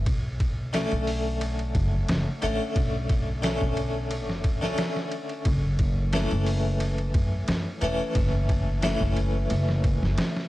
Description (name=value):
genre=trip hop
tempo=89 BPM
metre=4/4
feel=straight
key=F# minor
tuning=A4 = 441 Hz
part: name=harpsichord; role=accompaniment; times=0.0-10.5 s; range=D3 to C#4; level=-29 LUFS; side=left 1 dB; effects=tremolo, tape echo
part: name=upright bass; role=bass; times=0.0-10.2 s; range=E1 to F#2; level=-27 LUFS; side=equal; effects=tube saturation
part: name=trip hop sampler-style drum kit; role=drums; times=0.1-10.5 s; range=hi-hat, kick drum, ride cymbal, snare drum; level=-28 LUFS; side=equal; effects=none
room=studio reverb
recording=dry, gritty hardware recording, transformer saturation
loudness=-23 LUFS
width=side -17 dB against mid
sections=0.0-10.5 A section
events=none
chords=0.1 Bm7; 5.5 F#m7